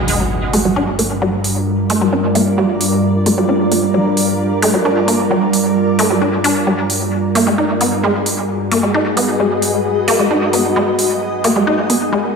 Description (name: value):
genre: driving peak-time techno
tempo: 132 BPM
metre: 4/4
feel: straight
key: G minor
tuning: A4 = 440 Hz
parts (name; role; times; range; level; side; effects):
- deep dark ambient pad; drone; 0.7-12.4 s; G2; -21 LUFS; right 1 dB; chorus, built-in reverb
- impact; sound effects; 0.0-1.7 s; none; -22 LUFS; equal; none
- granular cloud pad; texture; 0.0-12.4 s; G3 to Eb5; -18 LUFS; equal; built-in reverb, lush chorus
- electronic hi-hat; drums; 0.1-12.0 s; none; -21 LUFS; right 2 dB; none
- resonant blip pluck; riff; 0.5-12.2 s; G3 to Eb4; -16 LUFS; equal; chorus, overdrive, diffuse ambient delay
room: wet lush hall reverb, RT60 1.6 s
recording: dreamy mix soaked in reverb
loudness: -13 LUFS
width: side -5 dB against mid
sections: 0.0-12.4 A section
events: impact 0.0-1.7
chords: 0.0 Gm; 7.1 Abm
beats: 0.31 0.76 1.22 | 1.67 2.13 2.58 3.04 | 3.49 3.94 4.40 4.85 | 5.31 5.76 6.22 6.67 | 7.13 7.58 8.04 8.49 | 8.94 9.40 9.85 10.31 | 10.76 11.22 11.67 12.13